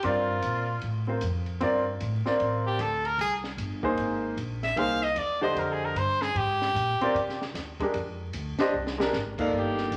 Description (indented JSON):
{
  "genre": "modal jazz",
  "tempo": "152 BPM",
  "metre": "4/4",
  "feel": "swing 64% on 8ths",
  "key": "unclear",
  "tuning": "A4 = 440 Hz",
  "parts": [
    { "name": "bright trumpet", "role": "melody", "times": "0.0-10.0 s", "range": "F4 to F5", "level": "-30 LUFS", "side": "equal", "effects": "none" },
    { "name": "clear grand piano", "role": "accompaniment", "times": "0.0-9.9 s", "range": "D3 to F5", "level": "-30 LUFS", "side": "equal", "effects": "none" },
    { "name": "upright bass", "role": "bass", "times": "0.0-10.0 s", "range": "G1 to C3", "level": "-36 LUFS", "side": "equal", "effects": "none" },
    { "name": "compact cocktail drum kit", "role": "drums", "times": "0.0-10.0 s", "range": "crash cymbal, hi-hat, kick drum, ride cymbal, snare drum", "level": "-42 LUFS", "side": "equal", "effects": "none" }
  ],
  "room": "moderate large studio reverb, RT60 1.2 s",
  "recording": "vinyl crackle",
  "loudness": "-28 LUFS",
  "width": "mono",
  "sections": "0.0-9.5 A section",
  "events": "trumpet solo 0.0-9.5; drum fill 8.7-9.1",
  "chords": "0.0 Gm9; 3.2 Fm9"
}